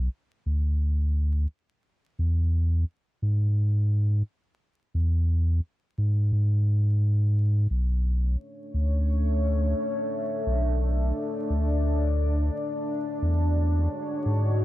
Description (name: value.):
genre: trip hop.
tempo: 87 BPM.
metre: 4/4.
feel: swing 58% on 16ths.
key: unclear.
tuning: A4 = 442 Hz.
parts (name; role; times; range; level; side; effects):
warm sub bass; bass; 0.0-14.6 s; B1 to G#2; -22 LUFS; equal; tube saturation.
deep dark ambient pad; sustained chords; 8.5-14.6 s; G#3 to D5; -29 LUFS; left 1 dB; chorus, built-in reverb, vintage 12-bit sampler grit.
room: little or no reverb.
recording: vinyl crackle.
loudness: -23 LUFS.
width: side -16 dB against mid.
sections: 0.0-14.6 A section.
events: none.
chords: 0.0 N.C.; 2.2 E; 7.7 Bm9; 13.2 E13.